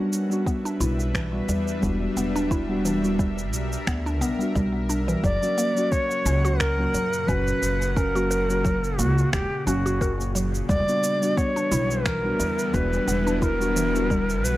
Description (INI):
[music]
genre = organic downtempo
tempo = 88 BPM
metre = 4/4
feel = swing 55% on 16ths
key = F# phrygian dominant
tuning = A4 = 440 Hz
[part]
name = muted felt-like synth keys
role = accompaniment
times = 0.0-14.2 s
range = A#2 to F#4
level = -28 LUFS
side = equal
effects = chorus, sidechain pumping, tape echo
[part]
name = bowed-like drone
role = sustained chords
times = 0.0-14.6 s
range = A#2 to F#5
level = -32 LUFS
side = left 1 dB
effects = built-in reverb, sidechain pumping
[part]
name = mallet-like synth pluck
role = arpeggios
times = 0.0-14.6 s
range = E3 to A#4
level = -30 LUFS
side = equal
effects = chorus, tape echo
[part]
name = electronic shaker and finger snaps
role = drums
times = 0.1-14.6 s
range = none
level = -32 LUFS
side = right 1 dB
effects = none
[part]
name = electronic kick drum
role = drums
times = 0.5-14.3 s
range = none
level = -26 LUFS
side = equal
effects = none
[part]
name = upright bass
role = bass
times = 0.8-14.6 s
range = E1 to F#2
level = -27 LUFS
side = equal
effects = none
[part]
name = reedy Native American-style cedar flute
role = melody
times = 5.2-14.6 s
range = F#4 to D5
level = -25 LUFS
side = equal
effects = tape echo
[sound]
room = digital ambience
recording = dry, gritty hardware recording, transformer saturation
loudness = -21 LUFS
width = side -16 dB against mid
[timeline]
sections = 0.0-5.2 A section; 5.2-14.6 B section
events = none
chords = 0.0 Em7; 5.2 F#; 10.7 Em7